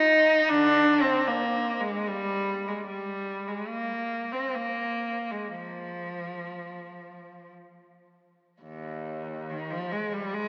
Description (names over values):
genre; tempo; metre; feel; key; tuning
classical, free, expressive piece for unaccompanied cello; 48-78 BPM; 3/4; rubato; Eb major; A4 = 442 Hz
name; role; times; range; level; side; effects
rich cello; solo; 0.0-10.5 s; Eb2 to Eb4; -28 LUFS; equal; none
room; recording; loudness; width
wet church reverb, RT60 3.3 s; AM radio sound; -28 LUFS; mono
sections
0.0-8.6 A section; 8.6-10.5 B section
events
none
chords
none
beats
| 0.49 1.27 2.05 | 2.86 3.66 4.54 | 5.54 6.58 7.55 | 8.62 9.48 10.32